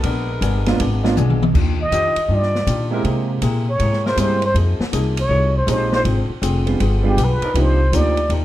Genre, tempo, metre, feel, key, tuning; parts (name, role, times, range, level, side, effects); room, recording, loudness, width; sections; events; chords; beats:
jazz, big band swing; 160 BPM; 4/4; swing 65% on 8ths; Eb major; A4 = 444 Hz
archtop guitar, miked and amplified; accompaniment; 0.0-8.4 s; Bb2 to Ab4; -27 LUFS; left 6 dB
clear saxophone section; sustained chords; 0.0-7.5 s; F3 to C5; -31 LUFS; left 1 dB
upright bass; bass; 0.0-8.4 s; F1 to C3; -18 LUFS; equal
open jazz drum kit; drums; 0.0-8.4 s; crash cymbal, hi-hat, kick drum, ride cymbal, snare drum, toms; -26 LUFS; equal
warm concert grand piano; accompaniment; 0.7-8.2 s; F3 to Ab4; -23 LUFS; right 4 dB
trumpet with plunger mute; melody; 1.8-8.3 s; G4 to Eb5; -20 LUFS; equal
moderate large studio reverb, RT60 1.3 s; dark, warm production; -16 LUFS; side -14 dB against mid
0.0-1.5 A section; 1.5-8.4 A section
muted trumpet solo 0.0-8.4; drum fill 1.2-1.5
0.0 Bb7b9; 1.5 Ebmaj9; 3.0 C7b13; 4.5 Fm11; 6.1 Dm7b5; 6.8 G7b9; 7.6 Cm11
| 0.04 0.42 0.79 1.17 | 1.54 1.92 2.29 2.67 | 3.05 3.42 3.80 4.17 | 4.55 4.93 5.30 5.68 | 6.05 6.43 6.81 7.18 | 7.56 7.94 8.31